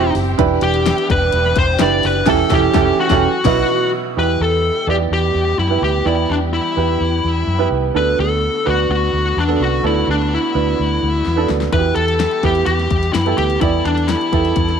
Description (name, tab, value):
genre	piano-driven pop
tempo	127 BPM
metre	4/4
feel	straight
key	E minor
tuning	A4 = 439 Hz
part	fuzz lead guitar	melody	0.0-14.8 s	D4 to D5	-18 LUFS	left 3 dB	distortion, slapback echo
part	warm upright piano	accompaniment	0.0-14.8 s	B2 to E5	-19 LUFS	right 12 dB	none
part	warm studio string section	sustained chords	0.0-14.8 s	D3 to A4	-29 LUFS	left 3 dB	none
part	vintage muted fingered electric bass	bass	0.0-14.8 s	E1 to F#2	-20 LUFS	left 1 dB	none
part	pop drum kit	drums	0.1-3.6, 11.3-14.8 s	crash cymbal, hi-hat, kick drum, snare drum	-21 LUFS	left 5 dB	none
room	light reverb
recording	1960s-style stereo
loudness	-14 LUFS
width	side -7 dB against mid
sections	0.0-4.2 A section; 4.2-14.8 B section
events	band accent 2.3-4.2; drum fill 11.3-11.7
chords	0.4 Em7; 2.3 A7/E; 3.2 Bsus4; 4.2 Em; 7.9 Bm7; 11.7 Em